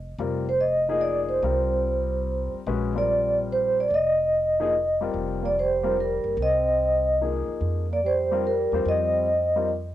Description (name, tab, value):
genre	jazz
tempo	145 BPM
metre	3/4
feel	swing 67% on 8ths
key	F dorian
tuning	A4 = 438 Hz
part	upright bass	bass	0.0-9.9 s	F1 to F2	-30 LUFS	right 1 dB	none
part	warm upright piano	accompaniment	0.2-9.7 s	F3 to C5	-30 LUFS	left 6 dB	cassette tape
part	vibraphone with soft mallets	melody	0.5-9.7 s	Bb4 to Eb5	-22 LUFS	right 1 dB	cassette tape
part	breathy trombone	second line	5.4-9.6 s	G3 to C4	-33 LUFS	right 8 dB	cassette tape
room	light reverb, small room ambience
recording	home recording on cassette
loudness	-21 LUFS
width	side -13 dB against mid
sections	0.0-9.9 A section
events	none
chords	0.0 F9sus4